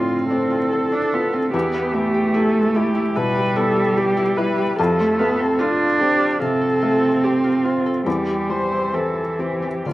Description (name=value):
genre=neoclassical piano and strings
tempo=74 BPM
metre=4/4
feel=rubato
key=unclear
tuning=A4 = 440 Hz
part: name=muted cello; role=second line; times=0.0-9.9 s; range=E3 to D4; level=-20 LUFS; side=right 2 dB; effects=slapback echo
part: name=felt-muted upright piano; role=accompaniment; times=0.0-9.9 s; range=D2 to C5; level=-24 LUFS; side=left 3 dB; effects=none
part: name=muted viola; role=accompaniment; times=0.0-9.9 s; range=F4 to C5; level=-22 LUFS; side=equal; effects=none
part: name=Celtic harp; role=arpeggios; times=0.0-9.9 s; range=C4 to F5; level=-28 LUFS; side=left 3 dB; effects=none
room=light reverb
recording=recorded outdoors, with no room sound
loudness=-17 LUFS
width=side -16 dB against mid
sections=0.0-9.9 A section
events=none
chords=0.0 Dm7; 1.5 Em; 4.8 F; 8.1 C/E